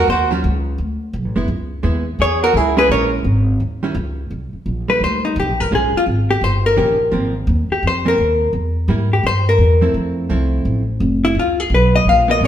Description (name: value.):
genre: jazz, small-group swing and bop.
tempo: 170 BPM.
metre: 4/4.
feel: swing 64% on 8ths.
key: unclear.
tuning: A4 = 440 Hz.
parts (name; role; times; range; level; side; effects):
hollow-body jazz guitar; melody; 0.0-12.5 s; Eb4 to F5; -16 LUFS; left 2 dB; none.
breathy trumpet; second line; 0.0-3.1 s; E4 to A#4; -20 LUFS; right 6 dB; none.
hollow-body jazz guitar; accompaniment; 0.0-12.5 s; D#3 to Bb4; -23 LUFS; right 3 dB; none.
upright bass; bass; 0.0-12.5 s; F1 to Ab2; -18 LUFS; equal; none.
room: wet stone room reverb, RT60 1.3 s.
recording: band playing live in one room.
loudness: -14 LUFS.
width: side -10 dB against mid.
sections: 0.0-4.3 A section; 4.3-12.5 B section.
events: hollow-body jazz guitar solo 4.3-12.5.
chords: 0.1 D#m9; 0.8 D; 1.5 C#m7; 2.9 A#m7b5; 3.6 D#7b9; 4.3 Cm7; 5.7 Bbm7; 6.4 Eb7; 7.1 Ab69; 8.5 C7 (rootless); 9.9 Fmaj7; 11.4 Db6.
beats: | 0.09 0.44 0.79 1.14 | 1.49 1.84 2.20 2.55 | 2.90 3.25 3.60 3.96 | 4.31 4.66 5.01 5.37 | 5.72 6.07 6.42 6.78 | 7.13 7.48 7.83 8.19 | 8.54 8.89 9.24 9.59 | 9.95 10.30 10.65 11.00 | 11.35 11.71 12.06 12.41.